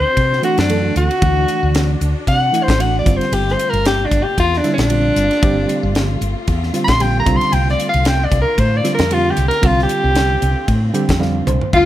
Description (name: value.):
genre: electric jazz fusion.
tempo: 114 BPM.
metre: 4/4.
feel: swing 55% on 16ths.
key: unclear.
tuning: A4 = 440 Hz.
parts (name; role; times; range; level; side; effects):
warm soprano saxophone; melody; 0.0-11.9 s; D4 to C6; -17 LUFS; left 1 dB; slapback echo.
muted studio string section; sustained chords; 0.0-11.9 s; C3 to F#4; -28 LUFS; left 2 dB; none.
woody fretless electric bass; bass; 0.0-11.9 s; G1 to C3; -18 LUFS; equal; none.
crisp fusion drum kit; drums; 0.2-11.9 s; crash cymbal, hi-hat, kick drum, ride cymbal, snare drum, toms; -21 LUFS; equal; none.
bright reed electric piano; accompaniment; 0.4-11.9 s; D3 to G5; -21 LUFS; right 2 dB; fast tremolo.
breathy tenor saxophone; second line; 11.8-11.9 s; F4; -10 LUFS; left 3 dB; none.
room: little or no reverb.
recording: none.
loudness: -13 LUFS.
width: side -13 dB against mid.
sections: 0.0-11.7 A section.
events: soprano saxophone solo 0.0-11.7; reed electric piano fill 10.7-11.7; drum fill 11.2-11.7.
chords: 0.0 D7; 3.1 Gm11; 7.3 C13sus4.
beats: 0.17 0.69 | 1.22 1.75 2.27 2.79 | 3.32 3.85 4.37 4.90 | 5.42 5.95 6.47 7.00 | 7.52 8.05 8.57 9.10 | 9.62 10.15 10.68 11.20 | 11.73.